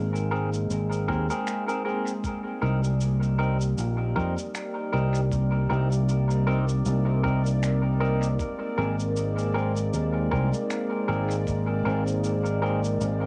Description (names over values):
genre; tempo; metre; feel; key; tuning
ambient dub; 78 BPM; 4/4; swing 57% on 16ths; C minor; A4 = 440 Hz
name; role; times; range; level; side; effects
warbly tape-like pad; sustained chords; 0.0-13.3 s; G3 to Bb4; -33 LUFS; equal; chorus, built-in reverb, cassette tape
fingered electric bass; bass; 0.0-13.3 s; Ab1 to F2; -27 LUFS; equal; none
electronic cabasa and finger snaps; drums; 0.2-13.2 s; none; -44 LUFS; equal; dub echo
clean electric guitar; stabs; 0.3-12.8 s; C4 to Bb4; -34 LUFS; equal; cassette tape, dub echo, plate reverb
electronic kick drum; drums; 1.1-11.6 s; none; -37 LUFS; equal; none
bubbling stepped-filter texture; texture; 2.5-13.3 s; D5; -40 LUFS; equal; chorus, built-in reverb, cassette tape, plate reverb
room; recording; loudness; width
light reverb; home recording on cassette, small room ambience; -26 LUFS; mono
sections
0.0-13.3 A section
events
none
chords
0.0 Abadd9; 2.2 Cm7; 8.4 Abadd9